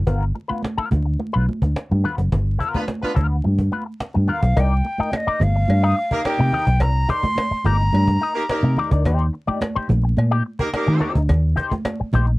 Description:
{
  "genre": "funk",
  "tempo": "107 BPM",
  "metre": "4/4",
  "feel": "straight",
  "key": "unclear",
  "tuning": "A4 = 440 Hz",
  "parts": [
    { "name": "vintage muted fingered electric bass", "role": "bass", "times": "0.0-12.4 s", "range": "F#1 to Eb3", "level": "-18 LUFS", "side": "equal", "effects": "none" },
    { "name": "electric guitar with an envelope filter", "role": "accompaniment", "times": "0.1-12.3 s", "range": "B3 to Eb5", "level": "-25 LUFS", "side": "left 5 dB", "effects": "wah" },
    { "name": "cajon", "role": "drums", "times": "0.1-12.3 s", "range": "none", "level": "-26 LUFS", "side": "equal", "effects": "none" },
    { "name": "congas", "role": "percussion", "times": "0.1-12.3 s", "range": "none", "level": "-29 LUFS", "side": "right 2 dB", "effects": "none" },
    { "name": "clear horn section", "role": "second line", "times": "2.7-11.1 s", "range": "Bb3 to B4", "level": "-24 LUFS", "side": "right 1 dB", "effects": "none" },
    { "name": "breathy silver concert flute", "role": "melody", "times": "4.3-8.8 s", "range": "Eb5 to C6", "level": "-23 LUFS", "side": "equal", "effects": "none" },
    { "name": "cowbell", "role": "percussion", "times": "4.6-12.0 s", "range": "none", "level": "-31 LUFS", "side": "left 1 dB", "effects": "none" }
  ],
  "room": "little or no reverb",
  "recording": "dry, close 1970s-style studio recording, vinyl crackle",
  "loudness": "-18 LUFS",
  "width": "side -20 dB against mid",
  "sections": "0.0-4.6 A section; 4.6-12.4 B section",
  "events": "band accent 2.3-4.6",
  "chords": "0.1 G7#9; 4.6 Cm9; 9.1 Eb6"
}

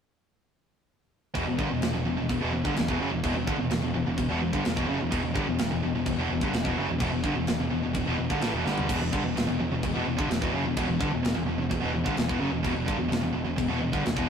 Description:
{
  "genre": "heavy metal",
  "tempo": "128 BPM",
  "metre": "4/4",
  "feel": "straight",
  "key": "E minor",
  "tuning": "A4 = 441 Hz",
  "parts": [
    { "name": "fuzz guitar", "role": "riff", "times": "1.3-14.3 s", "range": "E2 to G3", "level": "-32 LUFS", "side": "left 1 dB", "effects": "distortion" },
    { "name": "heavy high-gain guitar", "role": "riff", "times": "1.3-14.3 s", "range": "E2 to G3", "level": "-30 LUFS", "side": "right 3 dB", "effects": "distortion" },
    { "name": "high-gain distorted guitar", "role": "riff", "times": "1.3-14.3 s", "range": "E2 to G3", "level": "-35 LUFS", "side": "left 7 dB", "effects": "distortion" },
    { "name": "picked electric bass", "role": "bass", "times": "1.4-14.3 s", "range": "E1 to A1", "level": "-32 LUFS", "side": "equal", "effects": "none" },
    { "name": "tight metal drum kit", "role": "drums", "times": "1.4-14.3 s", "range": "china cymbal, crash cymbal, kick drum, snare drum, toms", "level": "-32 LUFS", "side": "equal", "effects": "none" }
  ],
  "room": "moderate studio reverb, RT60 0.6 s",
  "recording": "rough rehearsal-room recording",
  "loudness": "-25 LUFS",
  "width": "side -7 dB against mid",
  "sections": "1.3-14.3 A section",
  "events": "drum fill 8.7",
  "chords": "1.3 Em"
}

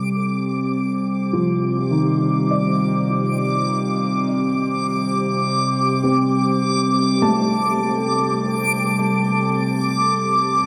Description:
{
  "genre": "ambient",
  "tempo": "51 BPM",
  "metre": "4/4",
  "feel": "straight",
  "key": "C dorian",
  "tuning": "A4 = 440 Hz",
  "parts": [
    { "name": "felt-muted upright piano", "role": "arpeggios", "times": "0.0-10.7 s", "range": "Eb3 to A5", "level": "-25 LUFS", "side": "equal", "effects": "delay" },
    { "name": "analog drone", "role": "drone", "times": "0.0-10.7 s", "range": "C3 to G3", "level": "-23 LUFS", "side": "equal", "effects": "chorus" },
    { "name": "backwards swelling texture", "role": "texture", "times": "0.0-10.7 s", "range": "D6", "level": "-25 LUFS", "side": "equal", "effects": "built-in reverb" }
  ],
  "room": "wet shimmer reverb, RT60 7.6 s",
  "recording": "none",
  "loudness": "-20 LUFS",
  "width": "mono",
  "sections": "0.0-10.7 A section",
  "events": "fade-in on felt piano 0.0-10.7",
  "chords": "0.0 Cm69"
}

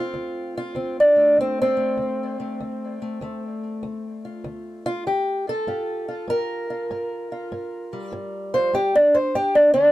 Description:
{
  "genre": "acoustic country blues, solo or duo",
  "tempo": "98 BPM",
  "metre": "4/4",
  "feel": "swing 66% on 8ths",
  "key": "D minor",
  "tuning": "A4 = 440 Hz",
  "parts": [
    { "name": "fingerpicked old ladder-braced acoustic guitar", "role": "solo", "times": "0.0-9.9 s", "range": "D2 to C5", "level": "-20 LUFS", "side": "equal", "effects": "tape echo" }
  ],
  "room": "moderate booth ambience, RT60 0.2 s",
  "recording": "dark, warm production",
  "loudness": "-20 LUFS",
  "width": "side -16 dB against mid",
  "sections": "0.0-9.9 A section",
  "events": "steel-string acoustic guitar solo 0.0-9.9",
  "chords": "0.0 Dm7; 5.7 Gm7"
}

